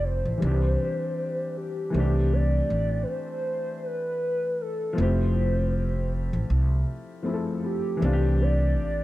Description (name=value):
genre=lo-fi hip hop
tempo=79 BPM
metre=4/4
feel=swing 55% on 16ths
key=C major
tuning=A4 = 439 Hz
part: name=warbly nostalgic lead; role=melody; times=0.0-9.0 s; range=G4 to D5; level=-30 LUFS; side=right 1 dB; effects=chorus, tremolo, low-pass filter, tape echo
part: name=warm upright piano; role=accompaniment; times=0.0-9.0 s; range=E3 to A4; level=-30 LUFS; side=left 3 dB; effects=low-pass filter, tape echo
part: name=upright bass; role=bass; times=0.0-9.0 s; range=F1 to C2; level=-23 LUFS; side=equal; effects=none
room=light reverb, studio ambience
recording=echo-heavy mix, cassette tape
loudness=-23 LUFS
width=side -16 dB against mid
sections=0.0-1.9 A section; 1.9-9.0 A section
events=none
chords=0.4 C; 1.9 C6; 5.0 Fmaj7; 8.0 C6